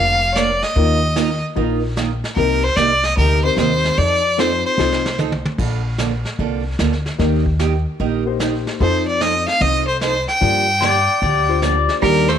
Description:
country, western swing; 149 BPM; 4/4; swing 66% on 8ths; Bb major; A4 = 439 Hz
clear fiddle; melody; 0.0-5.2, 8.8-12.4 s; Bb4 to G5; -17 LUFS; equal
picked acoustic archtop guitar; accompaniment; 0.0-12.3 s; C3 to Bb4; -24 LUFS; right 11 dB
upright bass; bass; 0.0-12.4 s; F1 to G2; -20 LUFS; left 1 dB
vintage brush drum kit; drums; 0.4-12.4 s; brushed snare drum, crash cymbal, hi-hat, kick drum, snare drum, toms; -26 LUFS; equal
warm upright piano; accompaniment; 0.8-12.3 s; Bb3 to C5; -23 LUFS; left 13 dB
pedal steel guitar; second line; 10.8-11.9 s; D5; -19 LUFS; left 7 dB
vintage hollow-body jazz guitar; second line; 12.0-12.4 s; G3 to A3; -18 LUFS; right 10 dB
light reverb, small room ambience; 1960s-style stereo with parts hard left and right; -15 LUFS; side -9 dB against mid
0.0-12.4 A section
drum fill 4.8-5.6
0.0 Bb; 0.8 Ebsus2; 2.4 Cm7; 4.0 F7; 5.6 Bbmaj7; 7.2 Eb; 8.8 F7; 10.4 Gm7

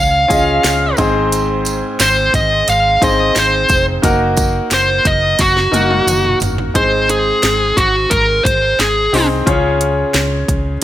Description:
piano-driven pop; 88 BPM; 4/4; straight; Ab mixolydian; A4 = 442 Hz
dark smooth lead guitar; melody; 0.0-9.3 s; Gb4 to F5; -14 LUFS; equal; overdrive
clear grand piano; accompaniment; 0.0-10.8 s; Ab2 to Eb5; -18 LUFS; left 1 dB
vintage muted fingered electric bass; bass; 0.0-10.8 s; F1 to Db2; -20 LUFS; equal
house drum kit; drums; 0.3-10.8 s; hi-hat, kick drum, snare drum, toms; -19 LUFS; equal
tambourine; percussion; 0.3-6.6 s; -26 LUFS; right 4 dB
light reverb; -11 LUFS; side -12 dB against mid
0.0-6.8 A section; 6.8-10.8 B section
drum fill 5.4-6.8
0.0 Db; 1.0 Ab; 4.0 Ebm/Gb; 6.8 Ab; 9.5 Db

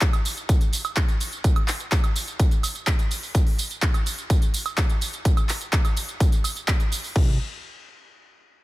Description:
EDM, festival progressive house; 126 BPM; 4/4; straight; A4 = 440 Hz
big-room dance drum kit; drums; 0.0-7.3 s; crash cymbal, handclaps, hi-hat, tambourine, woodblock; -28 LUFS; right 1 dB
electronic kick drum; drums; 0.0-7.3 s; -20 LUFS; equal
fat analog bass; bass; 7.2-7.4 s; C2; -26 LUFS; equal; sidechain pumping
little or no reverb; -20 LUFS; side -18 dB against mid
0.0-7.2 A section; 7.2-8.6 B section

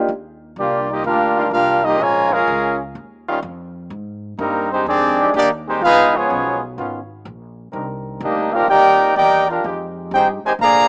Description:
jazz, big band swing; 126 BPM; 4/4; swing 68% on 8ths; Eb major; A4 = 440 Hz
upright bass; bass; 0.1-10.9 s; Ab1 to Bb2; -31 LUFS; equal
warm trumpet section; melody; 0.6-10.9 s; G3 to Bb5; -14 LUFS; equal
clear trombone section; second line; 0.6-10.9 s; C3 to G4; -22 LUFS; equal
warm trombone section; sustained chords; 1.4-10.4 s; Eb3 to D5; -25 LUFS; equal
moderate studio reverb, RT60 0.6 s; rough home demo mix, small speaker sound; -14 LUFS; side -32 dB against mid
0.1-10.9 A section
0.1 Ebmaj9; 2.0 Bbm7; 3.0 Ebsus2; 3.9 Abmaj7; 5.8 Db9; 7.7 Cm9; 9.6 Fm9

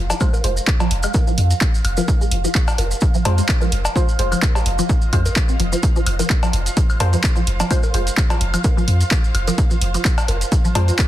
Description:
minimal techno; 128 BPM; 4/4; swing 55% on 16ths; A4 = 445 Hz
punchy sub bass; bass; 0.0-10.9 s; F1 to F2; -19 LUFS; equal; tube saturation, sidechain pumping
bubbling stepped-filter texture; texture; 0.0-11.1 s; F5; -31 LUFS; right 5 dB; chorus, built-in reverb, sidechain pumping
rich studio string section; texture; 0.0-11.1 s; F4 to Ab5; -37 LUFS; right 1 dB; sidechain pumping
resonant blip pluck; riff; 0.1-10.9 s; F3 to C4; -26 LUFS; equal; phaser, analog chorus, sidechain pumping, digital delay
cowbell, woodblock and bongos; percussion; 0.1-11.1 s; -27 LUFS; left 2 dB; digital delay
maracas; percussion; 0.1-11.1 s; -30 LUFS; right 2 dB
filtered dub chord stab; stabs; 0.2-10.8 s; Ab3 to C5; -28 LUFS; equal; wide subtle chorus, digital delay
electronic kick drum; drums; 0.2-11.1 s; -18 LUFS; equal
punchy analog drum machine; drums; 0.4-11.1 s; handclaps, hi-hat; -24 LUFS; right 1 dB
digital ambience; dense, heavily limited modern master; -15 LUFS; side -13 dB against mid
0.0-11.1 A section
fade-in on string section 0.0-11.1
0.0 F5

